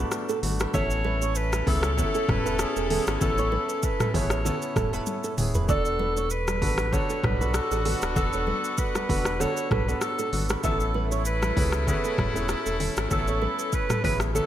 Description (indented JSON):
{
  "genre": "afrobeats",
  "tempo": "97 BPM",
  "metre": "4/4",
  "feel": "swing 55% on 16ths",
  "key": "A major",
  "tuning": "A4 = 440 Hz",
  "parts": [
    { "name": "warm horn section", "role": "second line", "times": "0.0-14.5 s", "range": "A3 to A4", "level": "-34 LUFS", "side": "left 4 dB", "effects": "none" },
    { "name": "clear concert grand piano", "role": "accompaniment", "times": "0.0-14.5 s", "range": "A3 to A4", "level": "-33 LUFS", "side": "left 1 dB", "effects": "none" },
    { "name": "flamenco guitar", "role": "riff", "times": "0.0-14.5 s", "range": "A4 to E5", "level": "-33 LUFS", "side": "right 6 dB", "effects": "analog chorus" },
    { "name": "sub bass with octave", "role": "bass", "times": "0.0-14.4 s", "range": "D1 to C#2", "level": "-29 LUFS", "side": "equal", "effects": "none" },
    { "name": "afro-pop drum kit", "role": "drums", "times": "0.1-14.5 s", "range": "hi-hat, kick drum, rim click, shaker, toms", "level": "-28 LUFS", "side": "equal", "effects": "gated reverb" },
    { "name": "congas", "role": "percussion", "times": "0.4-14.5 s", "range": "none", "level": "-36 LUFS", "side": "left 3 dB", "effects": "none" },
    { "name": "warm alto saxophone", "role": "melody", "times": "0.7-14.5 s", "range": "G#4 to C#5", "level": "-30 LUFS", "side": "right 1 dB", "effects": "none" }
  ],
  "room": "moderate plate reverb, RT60 3.2 s",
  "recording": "bright 1980s-style digital production",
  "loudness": "-23 LUFS",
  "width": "side -11 dB against mid",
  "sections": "0.0-14.5 A section",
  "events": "drum fill 5.1-5.7",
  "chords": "0.0 E7sus4; 0.7 Amaj7; 5.7 E7sus4; 10.6 Amaj7"
}